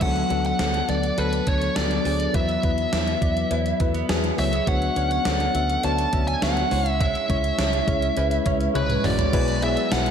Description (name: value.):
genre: 1980s-style pop.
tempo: 103 BPM.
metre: 4/4.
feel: straight.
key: unclear.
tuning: A4 = 439 Hz.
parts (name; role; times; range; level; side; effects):
bluesy overdriven lead guitar; melody; 0.0-10.1 s; B4 to A5; -25 LUFS; right 2 dB; distortion, tape echo, slapback echo.
FM electric piano with tremolo; accompaniment; 0.0-10.1 s; F#3 to E5; -26 LUFS; left 5 dB; slapback echo.
direct-recorded clean electric guitar; riff; 0.0-10.1 s; F#3 to A4; -33 LUFS; right 5 dB; analog chorus, tape echo, slapback echo.
vintage muted fingered electric bass; bass; 0.0-10.1 s; A1 to E2; -27 LUFS; right 1 dB; none.
gated 80s digital drum machine; drums; 0.0-10.1 s; crash cymbal, hi-hat, kick drum, snare drum, tambourine, toms; -27 LUFS; right 1 dB; gated reverb, gated reverb snare.
cowbell; percussion; 0.0-10.1 s; none; -40 LUFS; right 6 dB; none.
room: moderate lush hall reverb, RT60 1.9 s.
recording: big arena sound.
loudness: -20 LUFS.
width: side -8 dB against mid.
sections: 0.0-9.3 A section.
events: drum fill 8.8-9.3.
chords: 0.0 D6; 2.3 Esus2; 4.7 Bmadd9/D; 6.7 C#m; 9.3 Eadd9/B.